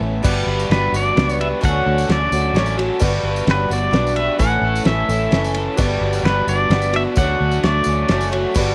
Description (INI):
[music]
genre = folk rock and heartland rock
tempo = 130 BPM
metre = 3/4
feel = straight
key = D major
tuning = A4 = 440 Hz
[part]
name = picked twelve-string acoustic guitar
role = accompaniment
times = 0.0-8.7 s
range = A2 to A4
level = -25 LUFS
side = equal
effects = none
[part]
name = crunchy overdriven guitar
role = riff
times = 0.0-8.7 s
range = A2 to B4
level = -28 LUFS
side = equal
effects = none
[part]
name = fingered electric bass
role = bass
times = 0.0-8.7 s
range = F#1 to D2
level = -24 LUFS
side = equal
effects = none
[part]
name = barky reed electric piano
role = accompaniment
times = 0.2-8.7 s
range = E4 to C#6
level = -33 LUFS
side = equal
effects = none
[part]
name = damped 70s drum kit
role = drums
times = 0.2-8.7 s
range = crash cymbal, kick drum, ride cymbal, snare drum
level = -24 LUFS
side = equal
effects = none
[part]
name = tambourine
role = percussion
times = 0.2-8.7 s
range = none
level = -38 LUFS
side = equal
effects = none
[part]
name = pedal steel guitar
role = melody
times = 0.7-8.3 s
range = B4 to F#5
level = -23 LUFS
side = equal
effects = none
[sound]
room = light reverb, small room ambience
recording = none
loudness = -18 LUFS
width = mono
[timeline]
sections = 0.2-8.7 A section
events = none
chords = 0.2 Gmaj7; 1.6 Dmaj7; 3.0 Gmaj7; 4.4 A; 5.8 Gmaj7; 7.2 Dmaj7